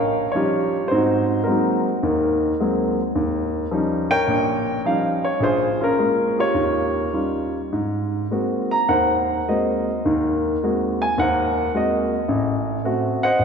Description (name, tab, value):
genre	solo jazz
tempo	106 BPM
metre	4/4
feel	swing 69% on 8ths, rubato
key	unclear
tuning	A4 = 440 Hz
part	warm grand piano	solo	0.0-13.4 s	Eb1 to Bb5	-18 LUFS	equal	none
room	wet church reverb, RT60 2.8 s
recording	recorded in a church or concert hall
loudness	-18 LUFS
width	side -6 dB against mid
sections	0.0-13.4 A section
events	none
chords	0.0 Eb9; 0.9 Ab9; 3.1 Eb9; 5.4 Bbm7; 6.6 Eb9; 7.7 Ab9; 12.3 Adim7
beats	0.34 | 0.91 1.47 2.03 2.59 | 3.14 3.71 4.27 4.84 | 5.41 5.98 6.56 7.15 | 7.74 8.33 8.91 9.49 | 10.05 10.62 11.18 11.73 | 12.29 12.84 13.41